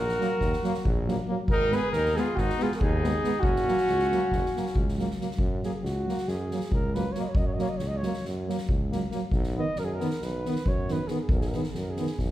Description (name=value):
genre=balkan folk, Balkan brass band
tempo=275 BPM (eighths)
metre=9/8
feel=straight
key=F# major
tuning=A4 = 440 Hz
part: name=mellow flugelhorn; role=melody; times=0.0-12.2 s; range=F#4 to D#5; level=-29 LUFS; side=right 1 dB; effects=none
part: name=warm trumpet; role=second line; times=0.0-5.0 s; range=C#4 to G#4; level=-34 LUFS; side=left 4 dB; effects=none
part: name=clear tuba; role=bass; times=0.0-12.3 s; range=F#1 to F#2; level=-32 LUFS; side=equal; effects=none
part: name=soft-mallet drum kit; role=percussion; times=0.1-12.3 s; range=kick drum, snare drum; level=-30 LUFS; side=equal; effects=none
part: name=clear French horn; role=accompaniment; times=0.2-12.1 s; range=A#3 to B3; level=-36 LUFS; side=left 4 dB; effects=none
part: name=dark euphonium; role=accompaniment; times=0.2-12.1 s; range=D#3 to G#3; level=-33 LUFS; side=right 3 dB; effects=none
room=wet recital hall reverb, RT60 1.3 s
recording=heard from further back in the room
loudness=-25 LUFS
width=side -14 dB against mid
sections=0.0-5.4 A section; 5.4-12.3 B section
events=flugelhorn solo 5.4-12.3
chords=0.0 D#m (rootless); 1.5 G#m; 3.4 F#; 9.3 B